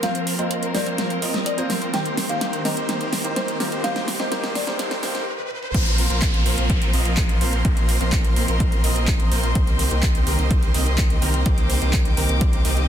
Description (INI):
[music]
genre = EDM, festival progressive house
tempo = 126 BPM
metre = 4/4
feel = straight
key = unclear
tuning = A4 = 440 Hz
[part]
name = folk marimba with medium mallets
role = melody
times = 0.0-5.0 s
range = C5 to G5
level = -30 LUFS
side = left 2 dB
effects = tape echo
[part]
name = warm concert grand piano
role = accompaniment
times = 0.0-5.2 s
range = Bb3 to Eb5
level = -30 LUFS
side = right 1 dB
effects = sidechain pumping, tape echo
[part]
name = dark studio string section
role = sustained chords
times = 0.0-12.9 s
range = Eb3 to D6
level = -31 LUFS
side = left 2 dB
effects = sidechain pumping
[part]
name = big supersaw lead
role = riff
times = 0.0-12.9 s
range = Eb3 to Eb5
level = -26 LUFS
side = right 1 dB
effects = cassette tape, sidechain pumping, low-pass filter, tape echo
[part]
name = pop drum kit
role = drums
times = 0.0-12.9 s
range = crash cymbal, handclaps, hi-hat, snare drum, toms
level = -26 LUFS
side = right 1 dB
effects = overdrive
[part]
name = riser and downlifter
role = sound effects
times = 2.5-9.6 s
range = none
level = -32 LUFS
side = right 1 dB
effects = none
[part]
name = saturated sub bass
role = bass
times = 5.7-12.9 s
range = Bb1 to C2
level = -22 LUFS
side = equal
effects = tube saturation, sidechain pumping
[part]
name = electronic kick drum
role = drums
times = 5.7-12.5 s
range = none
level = -21 LUFS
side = equal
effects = overdrive
[sound]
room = light reverb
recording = dense, heavily limited modern master, high-pass filter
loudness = -18 LUFS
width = side -10 dB against mid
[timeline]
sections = 0.0-5.7 A section; 5.7-12.9 B section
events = build-up 0.0-5.7; drum fill 0.0-5.3, 5.4-5.7; stop 5.3-5.7; drop 5.7-12.9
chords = 0.0 Bbsus2; 1.9 Cm7; 5.7 Bbsus2; 9.6 Cm7